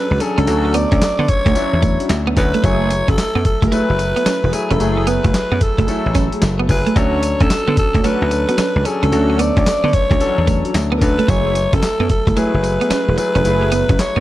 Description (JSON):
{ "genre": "R&B, new jack swing", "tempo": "111 BPM", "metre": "4/4", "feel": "swing 65% on 16ths", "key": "F# minor", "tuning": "A4 = 440 Hz", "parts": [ { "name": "growling alto saxophone", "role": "melody", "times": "0.0-14.2 s", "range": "G#4 to D5", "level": "-20 LUFS", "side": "equal", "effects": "none" }, { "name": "clear concert grand piano", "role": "accompaniment", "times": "0.0-14.2 s", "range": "E3 to G#5", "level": "-23 LUFS", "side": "left 4 dB", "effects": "none" }, { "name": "clean electric guitar", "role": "riff", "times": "0.0-14.2 s", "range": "F#3 to D4", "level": "-21 LUFS", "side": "right 4 dB", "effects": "wide subtle chorus" }, { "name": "mellow synth brass", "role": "stabs", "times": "0.1-13.7 s", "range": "A3 to G#4", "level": "-25 LUFS", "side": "right 1 dB", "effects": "chorus" }, { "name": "dry thumbed slap bass", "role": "bass", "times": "0.1-14.2 s", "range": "E1 to D3", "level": "-18 LUFS", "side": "equal", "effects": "none" }, { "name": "dusty soul sampler-style drum kit", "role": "drums", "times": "0.2-14.2 s", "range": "handclaps, hi-hat, kick drum, snare drum, tambourine", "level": "-18 LUFS", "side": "equal", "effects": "overdrive" } ], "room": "digital ambience", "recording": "dark, warm production", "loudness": "-14 LUFS", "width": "side -15 dB against mid", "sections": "0.0-14.2 A section", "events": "none", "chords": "0.0 Dmaj7; 2.6 F#m9; 7.0 Dmaj7; 11.3 F#m9" }